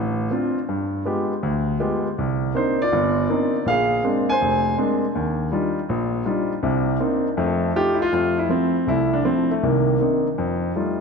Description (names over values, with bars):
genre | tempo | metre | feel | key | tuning
solo jazz | 162 BPM | 4/4 | swing 66% on 8ths | Bb major | A4 = 440 Hz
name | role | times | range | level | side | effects
warm grand piano | solo | 0.0-11.0 s | F1 to Ab5 | -19 LUFS | equal | none
room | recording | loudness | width
wet concert hall reverb, RT60 2.4 s | none | -19 LUFS | side -5 dB against mid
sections
0.0-8.1 A section; 8.1-11.0 B section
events
none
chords
0.0 Dm7; 0.7 G7b9; 2.2 Cm9; 3.7 Bb9; 5.2 Ebmaj9; 6.6 Cm9; 7.4 F7; 8.1 Fmaj7; 9.6 Cm9; 10.4 F9